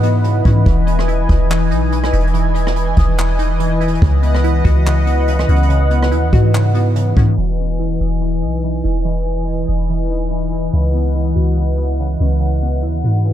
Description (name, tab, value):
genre	hip hop, atmospheric cloud-rap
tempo	143 BPM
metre	4/4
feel	half-time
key	E major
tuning	A4 = 439 Hz
part	warm analog pad	sustained chords	0.0-13.3 s	E3 to G#5	-20 LUFS	left 1 dB	chorus, sidechain pumping
part	glassy wavetable pluck	arpeggios	0.0-13.3 s	C#3 to D#6	-24 LUFS	right 1 dB	chorus, ping-pong delay
part	soft 808-style bass	bass	0.0-13.3 s	E1 to G#2	-15 LUFS	equal	none
part	jazz brush drum kit	drums	0.0-7.3 s	handclaps, hi-hat, kick drum, rim click	-18 LUFS	equal	none
room	light reverb, small room ambience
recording	low-pass filter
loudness	-13 LUFS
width	side -11 dB against mid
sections	0.0-7.4 A section; 7.4-13.3 B section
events	filter sweep 7.4-13.3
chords	0.0 C#m11; 0.7 Emaj7; 4.0 C#m11; 7.4 Emaj7; 10.7 C#m11